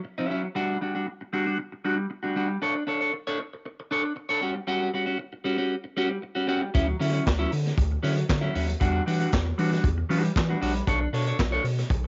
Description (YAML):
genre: disco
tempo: 116 BPM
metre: 4/4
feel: straight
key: D major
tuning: A4 = 442 Hz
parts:
  - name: clean electric guitar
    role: accompaniment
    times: 0.0-12.1 s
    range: F#3 to C#5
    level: -29 LUFS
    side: equal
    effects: phaser, cassette tape
  - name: saturated sub bass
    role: bass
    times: 6.7-12.1 s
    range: Bb1 to E3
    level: -29 LUFS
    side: equal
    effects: none
  - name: vintage drum kit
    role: drums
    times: 6.7-12.0 s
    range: handclaps, hi-hat, kick drum, snare drum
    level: -30 LUFS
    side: equal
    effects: vintage 12-bit sampler grit, cassette tape
room: light reverb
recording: home recording on cassette, nothing above 7.5 kHz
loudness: -27 LUFS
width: mono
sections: 0.0-12.1 A section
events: none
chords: 0.0 C#madd11/F#; 0.6 Dadd11/G; 2.6 Aadd11/D; 4.4 F#5; 6.7 Dmaj9; 8.8 Em9; 10.9 Bm9